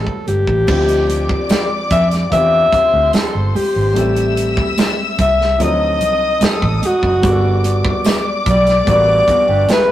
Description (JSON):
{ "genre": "lush 1970s-style soul", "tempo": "73 BPM", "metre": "4/4", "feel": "straight", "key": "unclear", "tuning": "A4 = 440 Hz", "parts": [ { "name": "breathy alto saxophone", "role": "melody", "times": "0.0-9.9 s", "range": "F#4 to E5", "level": "-15 LUFS", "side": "left 1 dB", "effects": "none" }, { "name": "warm concert grand piano", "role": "accompaniment", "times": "0.0-9.9 s", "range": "F3 to B4", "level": "-23 LUFS", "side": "left 2 dB", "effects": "none" }, { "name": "vintage muted fingered electric bass", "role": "bass", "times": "0.0-9.7 s", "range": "F#1 to F2", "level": "-18 LUFS", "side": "right 1 dB", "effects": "none" }, { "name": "modern studio drum kit", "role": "drums", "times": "0.1-9.9 s", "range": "crash cymbal, hi-hat, kick drum, snare drum", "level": "-19 LUFS", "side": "right 1 dB", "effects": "none" }, { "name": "congas", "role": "percussion", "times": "0.3-9.9 s", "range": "none", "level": "-27 LUFS", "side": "right 3 dB", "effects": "none" }, { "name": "dark studio string section", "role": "second line", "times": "0.7-9.9 s", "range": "B4 to E6", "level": "-23 LUFS", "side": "left 2 dB", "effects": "none" }, { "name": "tambourine", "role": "percussion", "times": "1.5-9.9 s", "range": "none", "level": "-34 LUFS", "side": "left 4 dB", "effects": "none" }, { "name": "mellow electric guitar", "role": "riff", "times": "9.3-9.9 s", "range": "B3 to A4", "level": "-22 LUFS", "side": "right 2 dB", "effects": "none" } ], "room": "moderate small room reverb, RT60 0.5 s", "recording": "rough rehearsal-room recording, tube saturation", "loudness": "-12 LUFS", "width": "side -13 dB against mid", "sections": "0.7-9.9 A section", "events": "none", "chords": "0.0 A7; 0.7 Dm11; 4.0 Am7; 5.6 D7b9; 7.2 Gmaj9" }